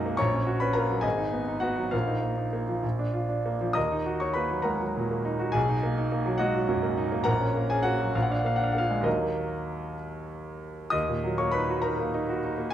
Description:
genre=classical, virtuoso piano study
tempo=63-72 BPM (dotted quarters)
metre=6/8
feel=rubato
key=Eb minor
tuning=A4 = 440 Hz
part: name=bright grand piano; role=solo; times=0.0-12.7 s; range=Ab1 to Eb6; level=-25 LUFS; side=equal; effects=none
room=wet recital hall reverb, RT60 1.3 s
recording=none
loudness=-25 LUFS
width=side -11 dB against mid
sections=0.0-10.9 A section; 10.9-12.7 A section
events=none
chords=0.2 Gb/Bb; 1.0 Abm7; 1.9 Bbsus4; 2.8 Bb; 3.8 Ebm; 5.6 Bmaj7; 7.3 Gb/Bb; 8.2 Bb7; 9.1 Ebm

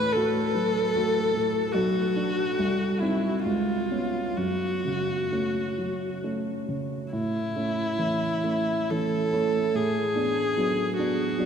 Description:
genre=classical, romantic duo for viola and grand piano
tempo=67 BPM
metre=3/4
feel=uneven beats, rubato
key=F# minor, A major from 7.1 s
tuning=A4 = 440 Hz
part: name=warm viola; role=melody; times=0.0-11.5 s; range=E4 to B4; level=-26 LUFS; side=left 1 dB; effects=none
part: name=dark baby grand piano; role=accompaniment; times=0.0-11.5 s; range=B1 to F#4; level=-27 LUFS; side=right 2 dB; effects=none
room=wet cathedral reverb, RT60 5.8 s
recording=in a vast, echoing space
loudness=-24 LUFS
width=side -7 dB against mid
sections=0.0-7.1 A section; 7.1-11.5 B section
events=none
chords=0.0 D; 1.7 Bm; 2.6 Cdim; 3.4 C#7; 4.4 F#m; 7.1 A; 9.7 Bm7/A

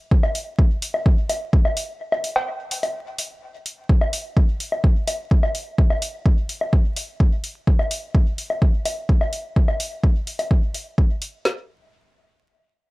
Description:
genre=techno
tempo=127 BPM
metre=4/4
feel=straight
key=none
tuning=none
part: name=deep house drum kit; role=drums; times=0.1-11.6 s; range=kick drum, snare drum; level=-17 LUFS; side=equal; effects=none
part: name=woodblock and cowbell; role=percussion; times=0.2-10.5 s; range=none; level=-26 LUFS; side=left 1 dB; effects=overdrive, sidechain pumping on perc, dub echo
part: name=electronic hi-hat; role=drums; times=0.3-11.3 s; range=none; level=-28 LUFS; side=left 1 dB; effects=none
room=little or no reverb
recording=dry, gritty hardware recording, vinyl crackle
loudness=-19 LUFS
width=side -21 dB against mid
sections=0.0-3.9 A section; 3.9-11.5 B section; 11.5-12.9 C section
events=break 2.0-3.9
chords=none

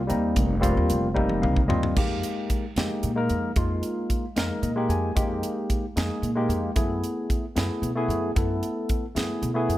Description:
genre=electric jazz fusion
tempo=75 BPM (dotted quarters)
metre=6/8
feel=straight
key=F minor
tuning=A4 = 441 Hz
part: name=barky tine electric piano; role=accompaniment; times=0.0-9.8 s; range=G3 to Ab5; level=-26 LUFS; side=left 1 dB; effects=lush chorus
part: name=upright bass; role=bass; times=0.0-9.8 s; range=F1 to Cb3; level=-27 LUFS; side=equal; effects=none
part: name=crisp fusion drum kit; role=drums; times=0.1-9.8 s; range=crash cymbal, hi-hat, kick drum, snare drum, toms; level=-27 LUFS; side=equal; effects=none
room=light reverb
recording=none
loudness=-23 LUFS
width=side -15 dB against mid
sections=0.0-2.0 A section; 2.0-9.8 B section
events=drum fill 1.2-2.0; tine electric piano fill 1.2-2.0, 4.4-5.2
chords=0.0 F9sus4; 2.0 Fm11; 6.8 Gbm11

